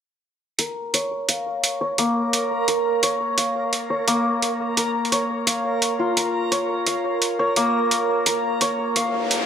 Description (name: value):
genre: half-time drum and bass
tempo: 172 BPM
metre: 4/4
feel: swing 59% on 16ths, half-time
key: Bb minor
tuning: A4 = 439 Hz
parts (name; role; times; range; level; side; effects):
- santur; arpeggios; 0.6-9.5 s; Bb3 to F5; -22 LUFS; left 2 dB; low-pass filter, digital delay
- electronic hi-hat; drums; 0.6-9.4 s; none; -21 LUFS; right 2 dB; small room ambience
- backwards swelling texture; texture; 2.2-9.5 s; Bb4; -27 LUFS; right 7 dB; built-in reverb
- riser; sound effects; 9.1-9.5 s; none; -27 LUFS; equal; none
room: moderate echo chamber reverb, RT60 1.4 s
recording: none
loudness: -20 LUFS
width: side -8 dB against mid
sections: 0.6-9.5 A section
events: filter sweep on santur 0.6-9.5; riser 9.1-9.5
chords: 0.6 Bbm